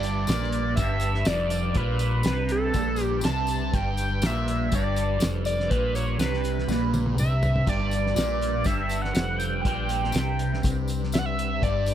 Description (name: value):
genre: psychedelic rock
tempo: 122 BPM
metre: 4/4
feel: straight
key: unclear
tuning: A4 = 440 Hz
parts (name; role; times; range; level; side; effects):
- overdriven synth lead; melody; 0.0-11.9 s; A4 to A5; -28 LUFS; equal; distortion, phaser, tape echo
- mellow tonewheel organ; sustained chords; 0.0-11.9 s; G3 to B4; -36 LUFS; right 4 dB; slow rotary speaker, chorus vibrato
- fuzz guitar; riff; 0.0-11.9 s; F2 to C3; -28 LUFS; equal; distortion, phaser
- deep dub picked electric bass; bass; 0.0-11.9 s; F1 to C2; -29 LUFS; equal; none
- cloth-damped thuddy drum kit; drums; 0.0-11.9 s; hi-hat, kick drum, snare drum, splash cymbal, toms; -28 LUFS; equal; none
- tambourine; percussion; 0.0-11.9 s; none; -41 LUFS; left 5 dB; none
room: light reverb, studio reverb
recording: none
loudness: -22 LUFS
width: side -10 dB against mid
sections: 0.0-11.9 A section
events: drum fill 6.7-7.7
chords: 0.0 G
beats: 0.27 0.77 1.26 | 1.76 2.25 2.74 3.24 | 3.73 4.22 4.72 5.21 | 5.70 6.19 6.69 7.18 | 7.67 8.17 8.66 9.15 | 9.65 10.14 10.64 11.13 | 11.63